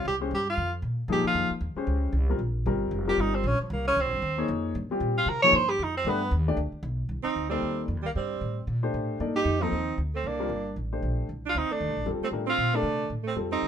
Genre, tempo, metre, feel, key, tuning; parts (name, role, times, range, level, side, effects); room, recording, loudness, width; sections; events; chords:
modal jazz; 230 BPM; 4/4; swing 58% on 8ths; Bb dorian, C dorian from 7.1 s; A4 = 442 Hz
warm tenor saxophone; melody; 0.0-13.7 s; F3 to Db5; -26 LUFS; right 1 dB
warm baby grand piano; accompaniment; 0.0-13.7 s; F3 to D5; -30 LUFS; left 4 dB
upright bass; bass; 0.0-13.7 s; F1 to C3; -30 LUFS; equal
warm alto saxophone; second line; 7.2-13.7 s; G3 to Eb4; -32 LUFS; right 7 dB
moderate studio reverb, RT60 0.7 s; minimal, uncompressed stereo recording; -25 LUFS; side -8 dB against mid
0.0-7.1 A section; 7.1-13.7 B section
tenor saxophone solo 0.0-7.1
0.0 Bbm69; 6.1 G; 7.1 Cm9; 11.3 F